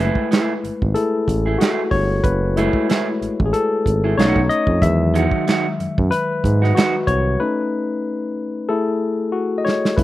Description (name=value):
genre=R&B, neo-soul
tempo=93 BPM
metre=4/4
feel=swing 55% on 16ths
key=F# dorian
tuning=A4 = 440 Hz
part: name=electric guitar through a small old amp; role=second line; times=0.0-6.9 s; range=G#3 to G#4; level=-22 LUFS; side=right 5 dB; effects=none
part: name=barky tine electric piano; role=accompaniment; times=0.0-10.0 s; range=D#3 to E5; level=-20 LUFS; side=left 3 dB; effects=overdrive, slapback echo
part: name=smooth synth bass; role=bass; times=0.0-10.0 s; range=F#1 to G#2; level=-19 LUFS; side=right 1 dB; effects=none
part: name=warm soul drum kit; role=drums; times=0.0-10.0 s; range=handclaps, hi-hat, kick drum, snare drum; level=-20 LUFS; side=right 1 dB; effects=none
room=little or no reverb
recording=recorded outdoors, with no room sound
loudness=-16 LUFS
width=side -15 dB against mid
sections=0.0-10.0 A section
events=tine electric piano solo 0.0-10.0; break 7.4-10.0; drum fill 9.3-10.0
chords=0.0 F#m9; 4.2 B7; 4.8 Emaj9; 7.4 B9; 8.7 Amaj7#11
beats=0.30 0.95 1.59 | 2.24 2.88 3.53 4.17 | 4.82 5.46 6.11 6.75 | 7.40 8.04 8.69 9.33 | 9.98